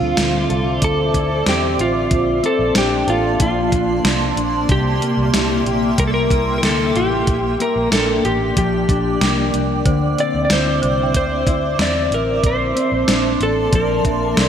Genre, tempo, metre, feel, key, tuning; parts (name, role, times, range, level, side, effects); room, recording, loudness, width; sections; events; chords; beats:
dream pop; 93 BPM; 4/4; straight; D minor; A4 = 440 Hz
electric slide guitar; melody; 0.0-14.5 s; F4 to D5; -20 LUFS; right 1 dB; lush chorus, digital delay
granular cloud pad; sustained chords; 0.0-14.5 s; Bb3 to D6; -22 LUFS; equal; built-in reverb
mellow electric guitar; arpeggios; 0.0-14.5 s; C3 to A4; -22 LUFS; left 3 dB; lush chorus, digital delay
vintage muted fingered electric bass; bass; 0.0-14.5 s; A1 to E2; -23 LUFS; equal
gated 80s digital drum machine; drums; 0.2-14.5 s; hi-hat, kick drum, snare drum; -20 LUFS; equal; gated reverb, gated reverb snare
small celesta; texture; 9.9-14.5 s; C5 to G5; -31 LUFS; right 3 dB; analog chorus, digital delay
moderate lush hall reverb, RT60 3.1 s; bright 1980s-style digital production; -15 LUFS; side -8 dB against mid
0.0-14.5 A section
0.0 Dm9; 2.1 Bbmaj9; 4.7 C7; 7.3 Gm7; 9.9 Dsus2; 12.4 Bbmaj9
0.18 0.82 1.47 | 2.11 2.76 3.40 4.05 | 4.69 5.34 5.98 6.63 | 7.27 7.92 8.56 9.21 | 9.85 10.50 11.14 11.79 | 12.43 13.08 13.72 14.37